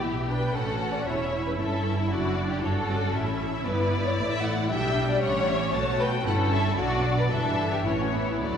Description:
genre	quick classical-period movement for string orchestra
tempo	115 BPM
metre	3/4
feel	rubato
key	unclear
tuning	A4 = 440 Hz
part	rich studio violin section	melody	0.0-8.6 s	C#5 to A5	-34 LUFS	left 3 dB	none
part	dark symphonic violin section	second line	0.0-8.6 s	E4 to F#5	-28 LUFS	left 2 dB	none
part	rich symphonic viola section	accompaniment	0.0-8.6 s	E3 to F#4	-30 LUFS	equal	none
part	rich studio double bass section	bass	0.0-8.6 s	E1 to D2	-31 LUFS	right 2 dB	none
part	rich symphonic cello section	bass	0.0-8.6 s	E2 to D3	-31 LUFS	right 2 dB	none
room	wet scoring stage reverb, RT60 2.0 s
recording	heard from further back in the room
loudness	-23 LUFS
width	side -8 dB against mid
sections	0.0-8.6 A section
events	none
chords	0.0 Em; 0.5 A; 1.6 A7/G; 2.1 D/F#; 3.7 G; 5.2 A; 6.8 Bm; 7.3 Em7/G; 7.9 A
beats	0.02 | 0.55 1.06 1.59 | 2.11 2.63 3.14 | 3.66 4.18 4.71 | 5.22 5.74 6.26 | 6.79 7.32 7.86 | 8.43

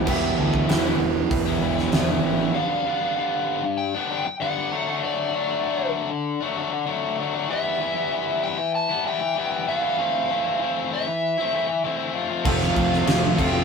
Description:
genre	classic rock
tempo	97 BPM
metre	4/4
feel	straight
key	unclear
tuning	A4 = 440 Hz
part	picked steel-string acoustic guitar	accompaniment	0.0-2.6, 12.4-13.6 s	E2 to G4	-33 LUFS	left 4 dB	none
part	biting overdriven guitar	riff	0.0-13.6 s	G2 to G4	-25 LUFS	left 6 dB	none
part	sludgy distorted guitar	riff	0.0-2.5, 12.4-13.6 s	E3 to G4	-24 LUFS	right 7 dB	overdrive
part	clear grand piano	accompaniment	0.1-2.5, 12.4-13.6 s	C4 to D5	-34 LUFS	equal	none
part	fuzz fingered electric bass	bass	0.1-2.5, 12.5-13.6 s	E1 to D2	-27 LUFS	equal	overdrive
part	huge arena drum kit	drums	0.1-2.1, 12.5-13.5 s	crash cymbal, hi-hat, kick drum, snare drum	-24 LUFS	equal	none
part	overdriven slide guitar	melody	2.5-13.6 s	D5 to A5	-26 LUFS	right 2 dB	none
room	moderate studio reverb, RT60 0.5 s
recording	rough rehearsal-room recording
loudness	-21 LUFS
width	side -5 dB against mid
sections	0.1-2.6 A section; 2.6-13.6 B section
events	none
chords	0.1 Em; 2.6 G; 4.7 D; 7.5 Em; 10.0 Am/E; 12.1 F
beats	| 0.07 0.69 1.31 1.93 | 2.55 3.17 3.79 4.41 | 5.03 5.65 6.26 6.88 | 7.50 8.12 8.74 9.36 | 9.97 10.59 11.21 11.83 | 12.45 13.07

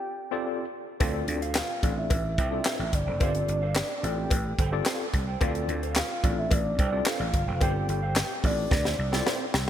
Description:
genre	early-eighties boogie funk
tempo	109 BPM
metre	4/4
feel	straight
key	D minor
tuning	A4 = 439 Hz
part	soft octave-layered synth lead	melody	0.0-9.5 s	D5 to G5	-33 LUFS	equal	chorus, tremolo
part	tine electric piano	accompaniment	0.3-9.5 s	C4 to D5	-33 LUFS	left 2 dB	overdrive, medium stereo tremolo
part	mellow electric guitar	riff	1.0-9.7 s	F4 to G5	-39 LUFS	right 7 dB	ensemble chorus
part	vintage slap bass	bass	1.0-9.7 s	F1 to D2	-29 LUFS	equal	tube saturation
part	tight funk drum kit	drums	1.0-9.7 s	handclaps, hi-hat, kick drum, snare drum	-27 LUFS	equal	gated reverb
part	cowbell	percussion	1.0-9.4 s	none	-40 LUFS	left 6 dB	none
room	light reverb, studio reverb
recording	bright 1980s-style digital production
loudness	-24 LUFS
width	side -10 dB against mid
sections	0.0-9.7 A section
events	drum fill 8.7-9.7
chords	0.0 G9sus4; 1.0 Dm7; 3.2 G9sus4; 5.4 Dm7; 7.6 G9sus4; 8.7 Dm9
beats	0.46 | 1.01 1.56 2.11 2.66 | 3.21 3.76 4.31 4.86 | 5.41 5.96 6.51 7.06 | 7.61 8.16 8.71 9.26

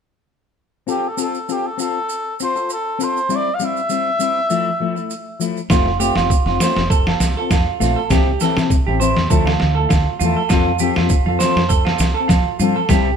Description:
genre	highlife guitar band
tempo	100 BPM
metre	4/4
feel	swing 54% on 16ths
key	F major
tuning	A4 = 444 Hz
part	trumpet with cup mute	melody	0.9-5.4 s	G4 to F5	-20 LUFS	equal	none
part	semi-hollow electric guitar	accompaniment	0.9-13.1 s	E3 to A4	-22 LUFS	left 8 dB	harmonic tremolo
part	maracas	percussion	0.9-13.0 s	none	-30 LUFS	right 5 dB	none
part	clean electric guitar	arpeggios	5.7-13.2 s	F4 to C5	-20 LUFS	right 8 dB	spring reverb
part	fingered electric bass	bass	5.7-13.2 s	F1 to F3	-20 LUFS	equal	none
part	trip hop sampler-style drum kit	drums	5.7-13.0 s	kick drum, snare drum	-17 LUFS	equal	overdrive
room	moderate stone room reverb, RT60 1.3 s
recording	band playing live in one room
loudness	-15 LUFS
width	side -7 dB against mid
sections	0.9-5.7 A section; 5.7-13.2 B section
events	none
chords	0.9 F; 3.3 C; 4.5 Fmaj7; 5.7 F; 8.1 C; 9.3 Dmadd9; 10.5 F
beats	| 0.88 1.48 2.09 2.69 | 3.29 3.90 4.50 5.10 | 5.70 6.30 6.90 7.50 | 8.10 8.70 9.30 9.90 | 10.50 11.10 11.70 12.30 | 12.90

